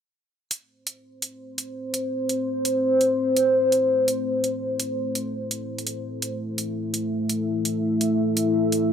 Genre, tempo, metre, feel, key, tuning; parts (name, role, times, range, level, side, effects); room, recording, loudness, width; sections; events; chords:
half-time drum and bass; 168 BPM; 4/4; swing 54% on 16ths, half-time; A minor; A4 = 440 Hz
deep dark ambient pad; sustained chords; 1.7-8.9 s; A3 to E5; -22 LUFS; left 1 dB; chorus, built-in reverb
electronic hi-hat; drums; 0.5-8.8 s; -26 LUFS; right 2 dB; overdrive
wet echo chamber reverb, RT60 1.6 s; -22 LUFS; side -8 dB against mid
0.5-8.9 A section
filter sweep on ambient pad 0.5-8.9
0.5 Am